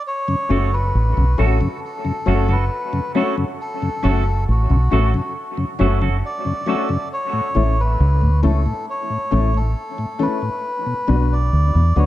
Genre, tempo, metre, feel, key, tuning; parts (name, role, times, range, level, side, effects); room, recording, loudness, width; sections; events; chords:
reggae; 68 BPM; 4/4; straight; F# minor; A4 = 439 Hz
melodica; melody; 0.0-12.1 s; F#4 to D5; -25 LUFS; equal; dub echo
mellow tonewheel organ; accompaniment; 0.3-12.0 s; F#2 to D4; -25 LUFS; left 2 dB; slow rotary speaker, dub echo
clean electric guitar; accompaniment; 0.5-6.9 s; C#4 to A4; -28 LUFS; right 7 dB; vibrato effect, dub echo
warm upright piano; stabs; 0.5-12.1 s; A3 to B4; -26 LUFS; left 6 dB; dub echo
deep dub fingered electric bass; bass; 0.5-12.1 s; F#1 to E2; -16 LUFS; equal
light reverb, studio reverb; dark, warm production; -17 LUFS; side -14 dB against mid
0.0-12.1 A section
0.1 F#m; 7.1 A; 10.6 Bm